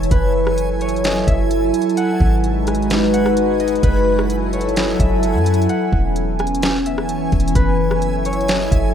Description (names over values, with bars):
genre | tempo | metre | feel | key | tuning
hip hop, atmospheric cloud-rap | 129 BPM | 4/4 | half-time | F# dorian | A4 = 440 Hz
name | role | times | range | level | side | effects
warbly tape-like pad | sustained chords | 0.0-8.9 s | E3 to G#5 | -18 LUFS | equal | chorus, built-in reverb, sidechain pumping
soft 808-style bass | bass | 0.0-8.9 s | E1 to F#2 | -20 LUFS | equal | none
smooth R&B drum kit | drums | 0.0-8.8 s | hi-hat, kick drum, rim click, snare drum | -21 LUFS | equal | none
backwards swelling texture | texture | 0.0-8.9 s | E4 to G#5 | -32 LUFS | equal | built-in reverb
concert harp | melody | 0.1-8.9 s | B4 to G#5 | -24 LUFS | left 1 dB | low-pass filter, tape echo
room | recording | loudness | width
digital ambience | rough home demo mix | -15 LUFS | side -9 dB against mid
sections
0.1-8.9 A section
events
none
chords
0.1 F#m9; 2.0 G#m7; 3.8 F#m9; 5.7 E6; 7.6 F#m9